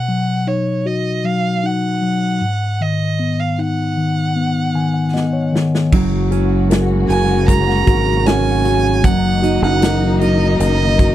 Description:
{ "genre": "pop ballad", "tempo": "77 BPM", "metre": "4/4", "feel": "straight", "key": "F# major", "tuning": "A4 = 439 Hz", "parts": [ { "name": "warm violin", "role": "melody", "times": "0.0-11.1 s", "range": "C#5 to A#5", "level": "-21 LUFS", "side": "right 4 dB", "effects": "none" }, { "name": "mellow tine electric piano", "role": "accompaniment", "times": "0.0-11.1 s", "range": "G#2 to G#5", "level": "-18 LUFS", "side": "left 3 dB", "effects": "none" }, { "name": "modern studio drum kit", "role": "drums", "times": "5.2-11.1 s", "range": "crash cymbal, hi-hat, kick drum, snare drum", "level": "-16 LUFS", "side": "equal", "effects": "none" }, { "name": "warm studio string section", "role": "sustained chords", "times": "5.9-11.1 s", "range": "C#3 to F#4", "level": "-22 LUFS", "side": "left 2 dB", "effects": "none" }, { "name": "fingerpicked steel-string acoustic guitar", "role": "arpeggios", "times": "5.9-11.1 s", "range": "F#3 to A#4", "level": "-22 LUFS", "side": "right 14 dB", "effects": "none" }, { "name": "fingered electric bass", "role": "bass", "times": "5.9-11.1 s", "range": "F#1 to G#1", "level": "-18 LUFS", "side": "right 1 dB", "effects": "none" } ], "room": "little or no reverb", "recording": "dry, close 1970s-style studio recording", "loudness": "-14 LUFS", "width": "side -12 dB against mid", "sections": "0.0-5.9 A section; 5.9-11.1 B section", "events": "tine electric piano fill 4.4-5.9; drum fill 5.1-5.9", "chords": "0.0 B; 2.4 G#m7; 5.9 F#add9; 9.0 D#m/F#", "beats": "0.47 1.25 2.03 | 2.81 3.59 4.37 5.15 | 5.92 6.70 7.48 8.26 | 9.04 9.82 10.60" }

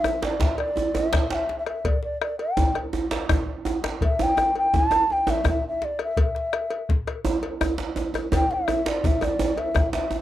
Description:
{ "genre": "west african traditional, West African drum ensemble", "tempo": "111 BPM (dotted quarters)", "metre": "12/8", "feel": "straight", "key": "unclear", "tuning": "A4 = 441 Hz", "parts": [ { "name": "mellow bass bansuri", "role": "melody", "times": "0.0-10.2 s", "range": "D5 to A5", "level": "-24 LUFS", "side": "equal", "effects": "none" }, { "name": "bombo", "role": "percussion", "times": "0.0-9.9 s", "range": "none", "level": "-25 LUFS", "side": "left 2 dB", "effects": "none" }, { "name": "cowbell", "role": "percussion", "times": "0.0-9.9 s", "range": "none", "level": "-34 LUFS", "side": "left 4 dB", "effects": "none" }, { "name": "djembe", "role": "percussion", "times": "0.0-10.2 s", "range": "none", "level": "-26 LUFS", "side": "right 3 dB", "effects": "none" }, { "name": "djembe", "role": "percussion", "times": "0.4-9.9 s", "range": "none", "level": "-30 LUFS", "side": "left 2 dB", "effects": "none" } ], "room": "light reverb", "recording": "dry, close 1970s-style studio recording", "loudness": "-21 LUFS", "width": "side -13 dB against mid", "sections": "0.0-10.2 A section", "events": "none", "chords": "none", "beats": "0.23 0.77 1.31 | 1.85 2.40 2.94 3.48 | 4.02 4.56 5.10 5.64 | 6.17 6.71 7.25 7.79 | 8.32 8.86 9.39 9.93" }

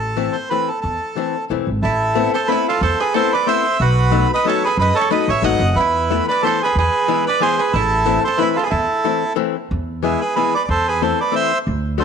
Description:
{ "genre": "musette waltz", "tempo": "183 BPM", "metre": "3/4", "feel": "swing 55% on 8ths", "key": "A harmonic minor", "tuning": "A4 = 440 Hz", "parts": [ { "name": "bandoneon", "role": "melody", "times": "0.0-12.0 s", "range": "E4 to F#5", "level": "-18 LUFS", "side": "right 3 dB", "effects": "none" }, { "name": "upright bass", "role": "bass", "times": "0.0-12.0 s", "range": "E1 to F#2", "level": "-20 LUFS", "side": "equal", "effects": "none" }, { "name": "archtop guitar, miked and amplified", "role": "accompaniment", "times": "0.2-12.0 s", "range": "E3 to F#4", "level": "-22 LUFS", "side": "left 13 dB", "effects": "none" }, { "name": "koto", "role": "second line", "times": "1.8-11.0 s", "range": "E4 to D#5", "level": "-26 LUFS", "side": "right 10 dB", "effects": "none" } ], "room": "moderate echo chamber reverb, RT60 1.7 s, small room ambience", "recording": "1960s-style stereo with parts hard left and right", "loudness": "-15 LUFS", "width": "side -6 dB against mid", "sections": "0.0-1.8 A section; 1.8-9.7 A section; 9.7-12.0 B section", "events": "none", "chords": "0.0 Am; 1.8 Amadd9; 3.8 B7; 5.8 Esus4; 6.8 E; 7.7 Am; 9.7 E; 10.7 Am/E", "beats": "0.17 0.50 | 0.83 1.16 1.50 | 1.83 2.16 2.49 | 2.82 3.15 3.48 | 3.80 4.13 4.45 | 4.78 5.10 5.44 | 5.77 6.10 6.43 | 6.76 7.08 7.41 | 7.74 8.06 8.39 | 8.71 9.04 9.38 | 9.71 10.04 10.37 | 10.70 11.02 11.34 | 11.67 11.99" }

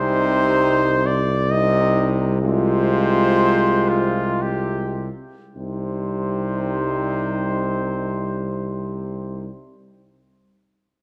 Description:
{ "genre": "classical, hymn-like piece for brass band", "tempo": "50-70 BPM", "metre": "3/4", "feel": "rubato", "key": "C minor", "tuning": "A4 = 440 Hz", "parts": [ { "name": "mellow cornet", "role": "melody", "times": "0.0-9.5 s", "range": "F4 to Eb5", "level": "-26 LUFS", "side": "equal", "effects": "none" }, { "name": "mellow French horn section", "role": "second line", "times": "0.0-9.5 s", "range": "Eb4 to F4", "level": "-28 LUFS", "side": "equal", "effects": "none" }, { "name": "brilliant trombone", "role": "accompaniment", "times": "0.0-9.5 s", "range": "C3", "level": "-31 LUFS", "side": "equal", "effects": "none" }, { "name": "mellow euphonium", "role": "accompaniment", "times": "0.0-9.5 s", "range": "G3 to Ab3", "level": "-29 LUFS", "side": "equal", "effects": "none" }, { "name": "mellow tuba", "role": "bass", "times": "0.0-9.5 s", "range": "C2", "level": "-26 LUFS", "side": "equal", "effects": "none" } ], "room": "moderate concert hall reverb, RT60 1.9 s", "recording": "none", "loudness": "-20 LUFS", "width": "mono", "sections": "0.0-5.6 A section; 5.6-8.9 B section", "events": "slowing down 0.0-5.6", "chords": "0.0 Cm; 2.4 Fm/C; 5.6 Cm", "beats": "0.62 1.51 | 2.43 3.38 4.41 | 5.56 6.67 7.79" }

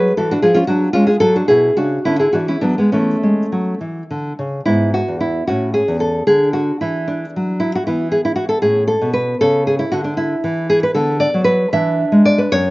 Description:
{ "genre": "classical, baroque-style dance for nylon-string guitar", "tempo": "66-80 BPM (dotted quarters)", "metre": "6/8", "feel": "rubato", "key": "A major", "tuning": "A4 = 439 Hz", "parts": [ { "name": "nylon-string guitar", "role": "solo", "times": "0.0-12.7 s", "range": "E2 to E5", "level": "-14 LUFS", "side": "equal", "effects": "slapback echo" } ], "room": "little or no reverb", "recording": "recorded outdoors, with no room sound, nothing above 7.6 kHz", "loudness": "-14 LUFS", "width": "side -20 dB against mid", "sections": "0.0-4.7 A section; 4.7-12.7 B section", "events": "none", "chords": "0.5 C#/E#; 1.2 F#5; 2.1 Bm/D; 2.9 A/E; 3.8 C#m; 4.7 E/G#; 5.5 A; 6.3 D; 7.9 E5; 8.6 A; 9.4 Dmaj7sus2/C#; 11.0 Bm/D; 11.7 E7", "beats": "0.46 | 1.23 2.06 | 2.94 3.82 | 4.69 5.50 | 6.30 7.09 | 7.87 8.62 | 9.42 10.19 | 10.95 11.73 | 12.52" }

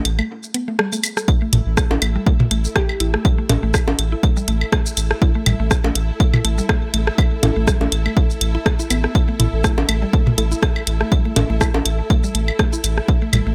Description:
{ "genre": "minimal techno", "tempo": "122 BPM", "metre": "4/4", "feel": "swing 55% on 16ths", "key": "unclear", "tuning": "A4 = 441 Hz", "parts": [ { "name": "round analog bass", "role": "bass", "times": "0.1-13.5 s", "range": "A1", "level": "-22 LUFS", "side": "equal", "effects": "sidechain pumping" }, { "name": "garage drum kit", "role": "drums", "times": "0.1-13.4 s", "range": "hi-hat, rim click, shaker", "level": "-24 LUFS", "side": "equal", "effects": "none" }, { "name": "electronic claves, woodblock, toms and bongos", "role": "percussion", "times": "0.1-13.4 s", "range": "none", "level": "-23 LUFS", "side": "equal", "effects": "none" }, { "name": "mallet-like synth pluck", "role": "riff", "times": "0.2-13.5 s", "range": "G3 to A4", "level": "-29 LUFS", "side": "equal", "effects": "chorus, sidechain pumping, dub echo" }, { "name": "electronic kick drum", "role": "drums", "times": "1.3-13.2 s", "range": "none", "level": "-19 LUFS", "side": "equal", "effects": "none" }, { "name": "rich symphonic string section", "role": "texture", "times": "1.3-13.5 s", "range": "E4 to E5", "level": "-34 LUFS", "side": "equal", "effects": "sidechain pumping" }, { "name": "swarming drone", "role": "texture", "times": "2.2-13.5 s", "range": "A4", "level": "-38 LUFS", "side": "equal", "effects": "none" }, { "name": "glassy wavetable pluck", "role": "melody", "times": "2.8-3.2 s", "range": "G4", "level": "-32 LUFS", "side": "equal", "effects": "chorus, dub echo" }, { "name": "filtered dub chord stab", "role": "stabs", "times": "9.6-11.7 s", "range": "A3 to A4", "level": "-33 LUFS", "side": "equal", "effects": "none" } ], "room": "little or no reverb", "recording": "none", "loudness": "-18 LUFS", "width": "mono", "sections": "0.0-1.3 A section; 1.3-13.5 A section", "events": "drop 0.0-1.3, 1.3-13.5; break 0.3-1.3", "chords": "0.0 A5", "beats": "0.30 0.79 | 1.28 1.77 2.27 2.76 | 3.25 3.74 4.23 4.72 | 5.22 5.71 6.20 6.69 | 7.18 7.67 8.17 8.66 | 9.15 9.64 10.13 10.63 | 11.12 11.61 12.10 12.59 | 13.09" }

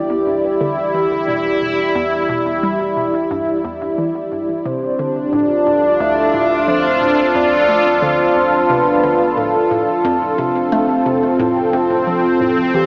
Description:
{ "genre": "ambient, sequencer-driven space music", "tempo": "89 BPM", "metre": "4/4", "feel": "straight", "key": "D dorian", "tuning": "A4 = 440 Hz", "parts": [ { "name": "sweeping resonant pad", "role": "sustained chords", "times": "0.0-12.9 s", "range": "C4 to D5", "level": "-18 LUFS", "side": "equal", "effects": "chorus" }, { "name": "hollow square pluck", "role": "riff", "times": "0.0-12.9 s", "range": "D2 to A3", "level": "-29 LUFS", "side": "equal", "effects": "chorus, analog delay" }, { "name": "round analog bass", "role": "bass", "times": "0.0-12.9 s", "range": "F1 to E2", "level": "-43 LUFS", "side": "equal", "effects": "none" }, { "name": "soft octave-layered synth lead", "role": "melody", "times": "4.7-12.9 s", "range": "G4 to E5", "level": "-20 LUFS", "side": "equal", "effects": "chorus, tremolo, analog delay" } ], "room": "wet lush hall reverb, RT60 2.8 s", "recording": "dreamy mix soaked in reverb, small speaker sound", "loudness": "-16 LUFS", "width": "mono", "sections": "0.0-12.9 A section", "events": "fade-in on analog synth bass 0.0-12.9", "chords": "0.0 Em; 4.7 Dm; 10.0 F", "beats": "0.61 1.28 | 1.96 2.63 3.30 3.98 | 4.65 5.33 6.00 6.67 | 7.35 8.02 8.70 9.37 | 10.05 10.72 11.39 12.07 | 12.74" }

